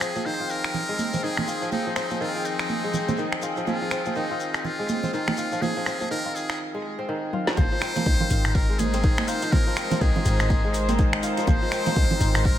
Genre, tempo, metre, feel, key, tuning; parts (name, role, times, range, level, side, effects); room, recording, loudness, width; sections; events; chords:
afro house; 123 BPM; 4/4; swing 59% on 16ths; A4 = 440 Hz
trumpet with metal mute; melody; 0.0-12.6 s; Eb4 to C5; -30 LUFS; equal; tape echo
warm studio string section; sustained chords; 0.0-12.6 s; F3 to G5; -31 LUFS; left 1 dB; sidechain pumping
kora; arpeggios; 0.0-12.6 s; Eb3 to F4; -30 LUFS; left 1 dB; sidechain pumping, tape echo
afro-pop drum kit; drums; 0.0-12.6 s; finger snaps, hi-hat, snare drum, toms; -30 LUFS; equal; analog delay
shekere; percussion; 0.0-12.6 s; -40 LUFS; left 4 dB
congas; percussion; 0.2-12.2 s; -30 LUFS; right 5 dB
warm 808-style bass; bass; 7.6-12.6 s; Ab1 to C2; -25 LUFS; equal; sidechain pumping
electronic kick drum; drums; 7.6-12.6 s; -22 LUFS; equal
light reverb, studio reverb; echo-heavy mix; -22 LUFS; side -12 dB against mid
0.0-7.6 A section; 7.6-12.6 B section
drum fill 7.3; drop 7.6-12.6
0.0 Fm7; 7.6 Ab